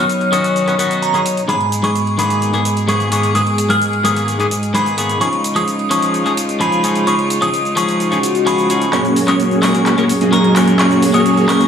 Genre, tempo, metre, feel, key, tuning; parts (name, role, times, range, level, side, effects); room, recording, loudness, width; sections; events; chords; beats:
EDM, festival progressive house; 129 BPM; 4/4; straight; F# major; A4 = 440 Hz
glassy synth bell; melody; 0.0-11.7 s; A#5 to E#6; -19 LUFS; right 1 dB; chorus, dub echo
twangy electric guitar; accompaniment; 0.0-11.7 s; G#2 to A#4; -19 LUFS; left 3 dB; spring reverb
bright chamber string section; sustained chords; 0.0-11.7 s; F#2 to C#5; -18 LUFS; equal; low-pass filter
big-room dance drum kit; drums; 0.1-11.7 s; cabasa, handclaps, hi-hat; -24 LUFS; right 1 dB; overdrive, studio reverb
swell and riser; sound effects; 8.2-11.7 s; -23 LUFS; left 4 dB
dense compressed supersaw; riff; 8.9-11.7 s; A#3 to D#5; -14 LUFS; right 1 dB; vintage 12-bit sampler grit, low-pass filter
moderate digital room reverb, RT60 1.1 s; small room reverb; -13 LUFS; side -7 dB against mid
0.0-8.9 A section; 8.9-11.7 B section
filter sweep on string section 0.0-8.9, 8.9-11.7; swell 8.2-8.9; build-up 8.9-11.7; drum fill 8.9-11.7
0.0 Badd9; 1.5 G#madd9; 5.2 C#add9; 8.9 F#add9
0.09 0.56 1.02 | 1.49 1.96 2.42 2.88 | 3.35 3.81 4.28 4.75 | 5.21 5.68 6.14 6.61 | 7.07 7.54 8.00 8.47 | 8.93 9.40 9.86 10.33 | 10.79 11.26